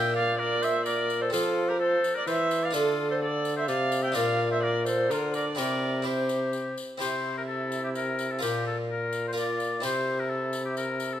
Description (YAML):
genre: classical, renaissance-style consort dance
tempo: 128 BPM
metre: 3/4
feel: straight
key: C mixolydian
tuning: A4 = 440 Hz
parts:
  - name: clear oboe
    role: melody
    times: 0.0-11.2 s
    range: F4 to E5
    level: -32 LUFS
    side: left 4 dB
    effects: none
  - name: warm viola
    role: second line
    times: 0.0-11.2 s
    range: E4 to G5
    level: -30 LUFS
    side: right 3 dB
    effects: none
  - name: harpsichord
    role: accompaniment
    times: 0.0-11.2 s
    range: Bb2 to Bb4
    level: -33 LUFS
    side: left 2 dB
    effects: none
  - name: mellow bassoon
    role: bass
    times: 0.0-11.2 s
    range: Bb2 to F3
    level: -30 LUFS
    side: equal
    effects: none
  - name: tambourine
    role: percussion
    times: 0.6-11.2 s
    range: none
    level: -41 LUFS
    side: left 5 dB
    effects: none
room: moderate recital hall reverb, RT60 1.6 s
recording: none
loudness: -25 LUFS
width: side -11 dB against mid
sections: 0.0-7.0 A section; 7.0-11.2 B section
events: none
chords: 0.0 Bb; 1.3 F; 2.7 Dm; 4.2 Bb; 5.6 C; 8.4 Bb; 9.8 C